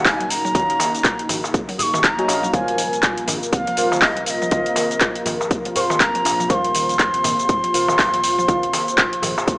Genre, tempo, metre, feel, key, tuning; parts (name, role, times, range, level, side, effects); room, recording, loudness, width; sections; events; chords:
afro house; 121 BPM; 4/4; swing 59% on 16ths; A4 = 445 Hz
breathy bansuri; melody; 0.0-9.6 s; Eb5 to Eb6; -21 LUFS; equal
warm analog pad; sustained chords; 0.0-9.6 s; C3 to C5; -27 LUFS; equal; chorus, sidechain pumping
mallet-like synth pluck; arpeggios; 0.0-9.6 s; Bb2 to Gb3; -32 LUFS; equal; chorus, sidechain pumping, dub echo
deep mellow chord stab; stabs; 0.0-9.6 s; F4 to Ab5; -26 LUFS; equal; chorus, phaser, sidechain pumping
smooth synth bass; bass; 0.0-9.4 s; Eb1 to Bb1; -35 LUFS; equal; sidechain pumping
afro-pop drum kit; drums; 0.1-9.6 s; handclaps, hi-hat, shaker; -20 LUFS; equal; overdrive
electronic kick drum; drums; 0.1-9.6 s; -22 LUFS; equal; overdrive
darbuka; percussion; 0.1-9.5 s; -27 LUFS; left 1 dB
light reverb; small speaker sound; -16 LUFS; side -24 dB against mid
0.0-9.6 A section
0.0 Ebm9; 2.5 Bbsus2/Eb